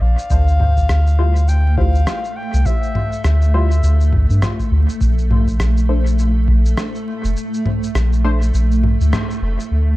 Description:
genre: ambient dub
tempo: 102 BPM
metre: 4/4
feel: swing 59% on 16ths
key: unclear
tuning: A4 = 440 Hz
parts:
  - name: warm clarinet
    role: melody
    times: 0.0-4.4 s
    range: E5 to G5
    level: -26 LUFS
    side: left 2 dB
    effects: dub echo
  - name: soft dub sub bass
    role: bass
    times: 0.0-10.0 s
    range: F1 to G2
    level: -14 LUFS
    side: equal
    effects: none
  - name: electronic shaker, congas and rim click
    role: drums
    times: 0.2-9.7 s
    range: none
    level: -24 LUFS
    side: equal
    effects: overdrive, low-pass filter on perc, low-pass filter on snare, dub echo
  - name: granular cloud pad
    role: sustained chords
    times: 1.2-10.0 s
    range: A3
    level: -25 LUFS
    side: right 1 dB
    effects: built-in reverb
  - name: electronic kick drum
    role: drums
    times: 0.3-6.6 s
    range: none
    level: -21 LUFS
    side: equal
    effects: none
  - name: filtered dub chord stab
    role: stabs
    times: 1.2-8.4 s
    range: G3 to C5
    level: -27 LUFS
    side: left 3 dB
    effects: lush chorus, dub echo
room: little or no reverb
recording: dark, warm production, vinyl crackle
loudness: -14 LUFS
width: side -18 dB against mid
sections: 0.0-9.7 A section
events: kick drops out 7.4-9.7; band accent 9.1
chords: 0.3 Dm11; 5.0 Bbmaj7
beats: | 0.31 0.90 1.48 2.07 | 2.66 3.25 3.84 4.42 | 5.01 5.60 6.19 6.78 | 7.37 7.96 8.54 9.13 | 9.72

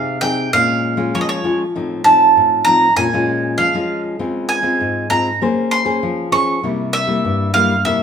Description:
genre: samba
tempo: 98 BPM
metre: 4/4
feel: straight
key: unclear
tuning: A4 = 439 Hz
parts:
  - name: bowl-back mandolin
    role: melody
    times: 0.0-8.0 s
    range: Db5 to Db6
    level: -15 LUFS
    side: right 2 dB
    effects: none
  - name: nylon-string guitar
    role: accompaniment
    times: 0.0-8.0 s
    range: G2 to C5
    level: -19 LUFS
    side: left 3 dB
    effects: none
room: wet large studio reverb, RT60 1.1 s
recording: band playing live in one room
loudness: -14 LUFS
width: side -7 dB against mid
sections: 0.0-8.0 A section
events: none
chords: 0.0 Fm7; 0.5 Bbm7; 1.8 F7/A; 3.0 Bbm7; 4.2 Dbmaj7; 5.4 Bbm9; 6.6 C7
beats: 0.53 1.14 | 1.75 2.36 2.97 3.58 | 4.20 4.80 5.42 6.03 | 6.64 7.25 7.86

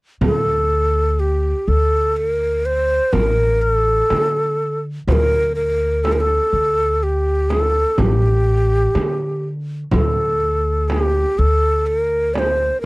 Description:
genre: Arabic maqam ensemble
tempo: 124 BPM (eighths)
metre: 10/8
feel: straight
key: D maqam hijaz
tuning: A4 = 440 Hz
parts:
  - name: breathy ney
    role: melody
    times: 0.2-12.9 s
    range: G4 to D5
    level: -18 LUFS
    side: equal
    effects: none
  - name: upright bass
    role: bass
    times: 0.2-12.7 s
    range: A1 to D3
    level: -20 LUFS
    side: equal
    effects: none
  - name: frame drum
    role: percussion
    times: 0.2-12.6 s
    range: none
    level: -23 LUFS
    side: right 2 dB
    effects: none
room: light reverb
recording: dry, close 1970s-style studio recording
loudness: -15 LUFS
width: side -23 dB against mid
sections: 0.2-12.9 A section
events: none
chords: none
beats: | 0.22 0.71 1.19 1.68 2.16 2.65 3.13 3.62 4.10 4.59 | 5.07 5.56 6.04 6.53 7.01 7.50 7.99 8.47 8.96 9.44 | 9.93 10.41 10.90 11.38 11.87 12.35 12.84

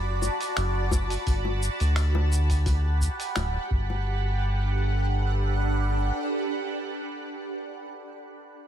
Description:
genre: sunset chillout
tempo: 86 BPM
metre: 4/4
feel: swing 54% on 16ths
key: G major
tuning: A4 = 440 Hz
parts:
  - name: shimmering ambient pad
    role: sustained chords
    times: 0.0-7.2 s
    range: D4 to B5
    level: -30 LUFS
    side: right 2 dB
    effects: chorus, built-in reverb, phaser
  - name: round analog bass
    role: bass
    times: 0.0-6.1 s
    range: D1 to D2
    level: -24 LUFS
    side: equal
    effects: none
  - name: dusty soul sampler-style drum kit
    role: drums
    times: 0.2-3.5 s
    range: cabasa, finger snaps, hi-hat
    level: -34 LUFS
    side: equal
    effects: none
  - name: bongos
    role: percussion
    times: 0.2-4.0 s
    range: none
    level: -36 LUFS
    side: left 6 dB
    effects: none
  - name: electronic kick drum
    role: drums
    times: 0.9-3.9 s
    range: none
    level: -26 LUFS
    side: equal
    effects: none
room: little or no reverb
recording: none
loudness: -24 LUFS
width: side -10 dB against mid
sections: 0.0-4.1 A section; 4.1-6.8 B section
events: none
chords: 0.0 Bm7; 1.3 Gmaj9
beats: 0.57 | 1.26 1.96 2.66 3.36 | 4.06 4.75 5.45 6.15

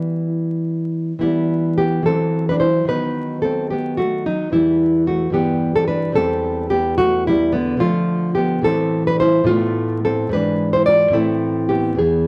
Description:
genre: classical, baroque-style dance for nylon-string guitar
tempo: 72 BPM (dotted quarters)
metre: 6/8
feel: rubato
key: E minor, A minor from 7.8 s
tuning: A4 = 440 Hz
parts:
  - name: nylon-string guitar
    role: solo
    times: 0.0-12.3 s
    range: E2 to D5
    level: -18 LUFS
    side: equal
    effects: none
room: moderate studio reverb, RT60 0.8 s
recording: vinyl crackle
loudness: -18 LUFS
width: mono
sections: 0.0-1.2 A section; 1.2-12.3 B section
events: none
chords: 0.0 Em; 2.0 F#m7b5/E; 2.9 B/D#; 4.5 Em; 5.3 Em/G; 6.1 Em; 7.8 Dm; 8.6 Am; 9.4 B7(b5, no3)/A; 10.3 E7/G#; 11.1 Am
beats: 0.30 | 1.20 2.04 | 2.87 3.69 | 4.52 5.33 | 6.14 6.96 | 7.78 8.62 | 9.45 10.29 | 11.13 11.98

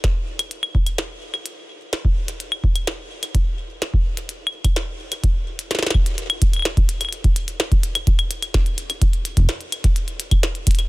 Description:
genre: IDM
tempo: 127 BPM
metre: 4/4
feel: straight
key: none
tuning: none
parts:
  - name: electronic kick drum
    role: drums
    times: 0.0-10.8 s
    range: none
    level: -18 LUFS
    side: equal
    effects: studio reverb
  - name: glitchy drum kit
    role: drums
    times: 0.0-10.9 s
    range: claves, hi-hat, snare drum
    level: -24 LUFS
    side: left 1 dB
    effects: studio reverb, soft clipping on snare, digital delay
room: little or no reverb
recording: dense, heavily limited modern master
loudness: -19 LUFS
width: side -22 dB against mid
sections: 0.0-6.2 A section; 6.2-10.9 B section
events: none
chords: none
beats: 0.04 | 0.51 0.98 1.46 1.93 | 2.40 2.87 3.35 3.82 | 4.29 4.76 5.24 5.71 | 6.18 6.65 7.12 7.60 | 8.07 8.54 9.02 9.49 | 9.96 10.43

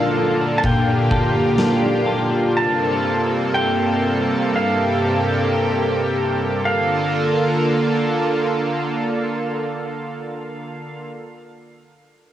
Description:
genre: dream pop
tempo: 55-64 BPM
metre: 4/4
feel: straight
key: Bb major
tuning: A4 = 441 Hz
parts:
  - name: pedal steel guitar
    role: melody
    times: 0.0-11.1 s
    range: F5 to A5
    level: -25 LUFS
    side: equal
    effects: cassette tape, tape echo
  - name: lush unison pad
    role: sustained chords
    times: 0.0-11.1 s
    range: G2 to A4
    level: -19 LUFS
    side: right 1 dB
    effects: chorus, cassette tape
  - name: semi-hollow electric guitar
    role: arpeggios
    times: 0.0-3.1 s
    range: Bb2 to A4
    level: -22 LUFS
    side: left 2 dB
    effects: lush chorus, cassette tape, tape echo
  - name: oversized low-tuned drum kit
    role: drums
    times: 0.6-1.8 s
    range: kick drum, ride cymbal, snare drum, tambourine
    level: -26 LUFS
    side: equal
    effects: none
room: moderate studio reverb, RT60 0.5 s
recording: home recording on cassette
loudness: -17 LUFS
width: side -11 dB against mid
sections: 0.0-6.6 A section; 6.6-11.0 B section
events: slowing down 0.0-6.6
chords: 0.0 Bbmaj7; 2.5 Gm11; 6.6 Bbmaj7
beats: 0.64 1.58 | 2.55 3.53 4.53 5.57 | 6.64 7.72 8.81 9.89

